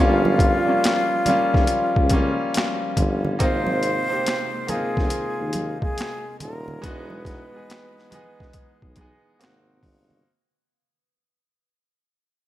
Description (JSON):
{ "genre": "R&B, neo-soul", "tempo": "70 BPM", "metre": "4/4", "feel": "swing 63% on 16ths", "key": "Ab major", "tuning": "A4 = 439 Hz", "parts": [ { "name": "breathy concert flute", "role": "melody", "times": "0.0-9.4 s", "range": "F4 to C5", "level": "-26 LUFS", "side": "right 1 dB", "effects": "tape echo" }, { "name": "bright grand piano", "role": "accompaniment", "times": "0.0-10.3 s", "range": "G3 to G#4", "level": "-24 LUFS", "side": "left 2 dB", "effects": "none" }, { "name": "tonewheel organ", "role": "sustained chords", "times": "0.0-10.3 s", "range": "C3 to Gb4", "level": "-34 LUFS", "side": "right 1 dB", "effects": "none" }, { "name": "warm tuba", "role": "bass", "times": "0.0-10.2 s", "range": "Eb1 to Eb2", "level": "-26 LUFS", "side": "equal", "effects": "none" }, { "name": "congas", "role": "percussion", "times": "0.3-10.3 s", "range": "none", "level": "-32 LUFS", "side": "right 2 dB", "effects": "none" }, { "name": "boom bap sampler-style drum kit", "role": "drums", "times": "0.4-10.1 s", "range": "finger snaps, hi-hat, kick drum, snare drum", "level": "-23 LUFS", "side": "equal", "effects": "overdrive" } ], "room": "light reverb, small room reverb", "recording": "none", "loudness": "-19 LUFS", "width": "side -14 dB against mid", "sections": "0.0-10.3 A section", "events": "fade-out 0.0-10.3", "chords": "0.0 Gm7b5; 3.4 Ab69; 6.8 Emaj7; 9.4 Ab9", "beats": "0.83 1.69 2.55 | 3.40 4.26 5.12 5.97 | 6.83 7.69 8.55 9.40" }